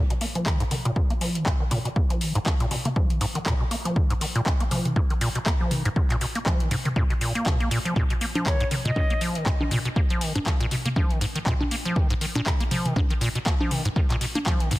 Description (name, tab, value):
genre	acid house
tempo	120 BPM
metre	4/4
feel	swing 57% on 16ths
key	Bb phrygian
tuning	A4 = 439 Hz
part	acid bass, square	riff	0.0-14.8 s	Ab2 to Bb3	-27 LUFS	equal	sidechain pumping, digital delay
part	booming analog drum machine	drums	0.1-14.8 s	congas, handclaps, hi-hat, toms	-29 LUFS	left 1 dB	none
part	electronic kick drum	drums	0.5-14.6 s	none	-24 LUFS	equal	none
part	bright concert flute	melody	8.5-9.2 s	Db5 to Eb5	-32 LUFS	left 2 dB	digital delay
room	light reverb, digital ambience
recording	dense, heavily limited modern master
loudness	-22 LUFS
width	side -18 dB against mid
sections	0.0-14.8 A section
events	filter sweep on acid bass 0.0-14.8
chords	0.0 Bb5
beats	0.46 0.96 1.46 | 1.96 2.46 2.96 3.46 | 3.96 4.46 4.96 5.46 | 5.96 6.46 6.96 7.46 | 7.96 8.46 8.96 9.46 | 9.96 10.46 10.96 11.46 | 11.96 12.46 12.96 13.46 | 13.96 14.46